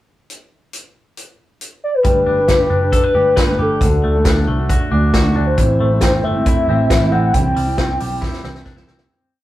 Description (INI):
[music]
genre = jangly indie pop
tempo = 136 BPM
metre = 4/4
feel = straight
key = G major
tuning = A4 = 440 Hz
[part]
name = vintage drum kit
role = drums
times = 0.3-9.1 s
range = hi-hat, kick drum, snare drum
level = -19 LUFS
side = equal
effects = none
[part]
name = warbly nostalgic lead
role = melody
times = 1.8-8.7 s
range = A4 to G5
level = -17 LUFS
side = left 1 dB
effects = chorus, tremolo
[part]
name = fingerpicked steel-string acoustic guitar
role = accompaniment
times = 2.0-9.1 s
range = A2 to B4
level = -22 LUFS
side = right 2 dB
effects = none
[part]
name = semi-hollow electric guitar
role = arpeggios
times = 2.0-9.4 s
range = A2 to B4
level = -24 LUFS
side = left 2 dB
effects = none
[part]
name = vintage muted picked electric bass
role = bass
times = 2.0-9.1 s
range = F#1 to D2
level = -19 LUFS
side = equal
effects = none
[sound]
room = moderate studio reverb, RT60 0.5 s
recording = rough rehearsal-room recording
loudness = -13 LUFS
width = side -15 dB against mid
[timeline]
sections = 0.3-2.0 pickup bar; 2.0-9.1 verse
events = fade-out 7.3-9.1; drum fill 8.2-9.1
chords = 0.3 N.C.; 2.0 Gadd9; 3.8 D; 5.6 Am; 7.3 C